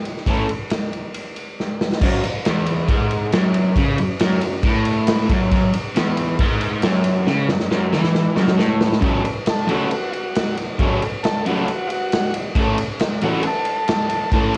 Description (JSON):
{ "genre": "garage rock duo or trio", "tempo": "137 BPM", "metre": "4/4", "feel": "straight", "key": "F# minor", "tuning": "A4 = 441 Hz", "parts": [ { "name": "raw garage drum kit", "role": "drums", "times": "0.1-14.6 s", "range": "crash cymbal, kick drum, ride cymbal, snare drum", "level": "-23 LUFS", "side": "equal", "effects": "cassette tape" }, { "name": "crunchy overdriven guitar", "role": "riff", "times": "0.3-14.5 s", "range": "E2 to A4", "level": "-22 LUFS", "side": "equal", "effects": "cassette tape" }, { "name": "overdriven combo organ", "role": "melody", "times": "9.5-14.5 s", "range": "E#4 to A4", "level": "-27 LUFS", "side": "equal", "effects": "tape echo" } ], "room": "light reverb, studio reverb", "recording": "home recording on cassette", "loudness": "-20 LUFS", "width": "mono", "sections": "0.0-2.0 A section; 2.0-9.0 B section; 9.0-14.6 C section", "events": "drum fill 1.6-2.0, 7.3-9.0; transistor combo organ solo 9.0-14.6", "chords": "0.0 A; 2.0 F#m; 12.6 A" }